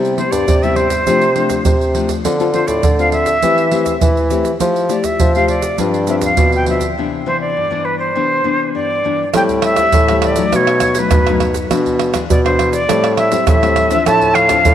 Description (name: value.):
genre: samba and choro.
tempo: 102 BPM.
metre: 4/4.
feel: straight.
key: C major, A minor from 9.3 s.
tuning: A4 = 439 Hz.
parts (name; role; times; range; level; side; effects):
nylon-string guitar; accompaniment; 0.0-14.7 s; F#2 to A4; -20 LUFS; left 8 dB; none.
mellow bassoon; bass; 0.0-14.7 s; G2 to F3; -17 LUFS; equal; none.
egg shaker, pandeiro, surdo and tamborim; percussion; 0.0-14.7 s; none; -17 LUFS; right 3 dB; none.
jazz flute; melody; 0.2-14.7 s; B4 to A5; -16 LUFS; right 1 dB; none.
room: moderate plate reverb, RT60 3.0 s.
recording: 1960s-style stereo.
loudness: -12 LUFS.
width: side -10 dB against mid.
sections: 0.0-9.3 A section; 9.3-14.7 B section.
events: break 7.0-9.3.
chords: 0.0 Cmaj7; 1.1 F6/C; 2.2 Dm7; 3.4 Am7/E; 4.6 Fmaj9; 5.8 G7sus4; 7.0 Cmaj9; 9.3 Am7; 10.5 B7; 11.7 E7/B; 12.9 Am7; 14.1 Dm7/A.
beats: 0.48 1.07 1.66 | 2.25 2.84 3.43 4.03 | 4.62 5.21 5.80 6.39 | 6.98 7.57 8.16 8.75 | 9.34 9.94 10.53 11.12 | 11.70 12.29 12.88 13.47 | 14.06 14.65.